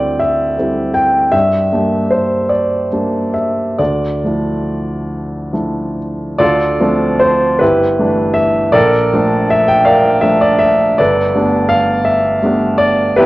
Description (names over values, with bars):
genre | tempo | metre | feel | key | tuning
classical, impressionist solo piano | 43-56 BPM (dotted quarters) | 6/8 | rubato | unclear | A4 = 437 Hz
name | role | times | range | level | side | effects
clear baby grand piano | solo | 0.0-13.3 s | G1 to G5 | -11 LUFS | equal | none
room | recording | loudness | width
moderate recital hall reverb, RT60 1.7 s | worn, warbling old tape, cassette tape, warbly pitch drift | -11 LUFS | side -18 dB against mid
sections
0.0-6.4 A section; 6.4-13.3 A section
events
none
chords
0.0 C69/D; 1.3 Gm6; 3.8 Dmadd9; 6.4 Dm7; 7.6 G69; 8.8 Bbmaj7; 11.0 Gadd9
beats
0.22 | 1.33 2.50 | 3.79 5.12 | 6.41 7.61 | 8.75 9.88 | 10.99 12.08 | 13.17